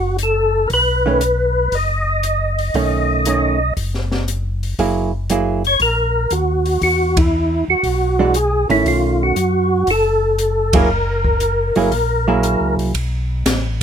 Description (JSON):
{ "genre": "soul jazz organ trio", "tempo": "118 BPM", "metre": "4/4", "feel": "swing 69% on 8ths", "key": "unclear", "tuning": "A4 = 439 Hz", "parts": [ { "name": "percussive tonewheel organ", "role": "melody", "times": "0.0-12.8 s", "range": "E4 to D#5", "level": "-17 LUFS", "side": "equal", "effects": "slow rotary speaker, chorus vibrato" }, { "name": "mellow tonewheel organ", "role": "bass", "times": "0.0-13.8 s", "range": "F#1 to F#2", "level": "-20 LUFS", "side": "left 1 dB", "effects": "chorus vibrato, slow rotary speaker" }, { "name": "open jazz drum kit", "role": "drums", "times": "0.2-13.6 s", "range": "hi-hat, kick drum, ride cymbal, snare drum", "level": "-22 LUFS", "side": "left 1 dB", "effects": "none" }, { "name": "hollow-body jazz guitar", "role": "accompaniment", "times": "1.1-12.9 s", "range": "D#3 to G#4", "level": "-18 LUFS", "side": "right 4 dB", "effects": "none" } ], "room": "light reverb", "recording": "minimal, uncompressed stereo recording", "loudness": "-15 LUFS", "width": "side -8 dB against mid", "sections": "0.0-12.9 A section", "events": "band accent 7.1, 10.6", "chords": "0.0 B9; 4.8 F#9; 6.8 Eadd9; 8.9 B9; 10.9 F#9; 12.9 B7(no3)", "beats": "0.19 | 0.70 1.21 1.72 2.23 | 2.74 3.25 3.76 4.27 | 4.78 5.29 5.80 6.31 | 6.82 7.33 7.84 8.35 | 8.86 9.37 9.88 10.39 | 10.90 11.41 11.92 12.43 | 12.94 13.46" }